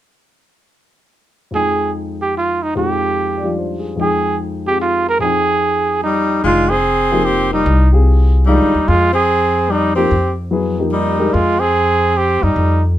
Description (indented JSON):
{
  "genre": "modal jazz",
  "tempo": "147 BPM",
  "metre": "3/4",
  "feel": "swing 65% on 8ths",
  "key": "F dorian",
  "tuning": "A4 = 440 Hz",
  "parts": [
    { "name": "warm grand piano", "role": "accompaniment", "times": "1.5-11.3 s", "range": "F2 to G5", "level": "-20 LUFS", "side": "left 2 dB", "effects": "none" },
    { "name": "breathy trumpet", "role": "melody", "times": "1.6-12.8 s", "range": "Eb4 to Bb4", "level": "-16 LUFS", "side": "right 3 dB", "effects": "none" },
    { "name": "clear tenor saxophone", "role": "second line", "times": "6.0-12.8 s", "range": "G3 to C4", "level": "-20 LUFS", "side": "left 5 dB", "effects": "none" },
    { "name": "upright bass", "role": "bass", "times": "6.4-13.0 s", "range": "F1 to Gb2", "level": "-16 LUFS", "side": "equal", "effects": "none" }
  ],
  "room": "light reverb",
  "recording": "close, detailed microphones",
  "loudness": "-13 LUFS",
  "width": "side -12 dB against mid",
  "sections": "1.5-6.4 A section; 6.4-13.0 B section",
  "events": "none",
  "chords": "1.5 Fm9"
}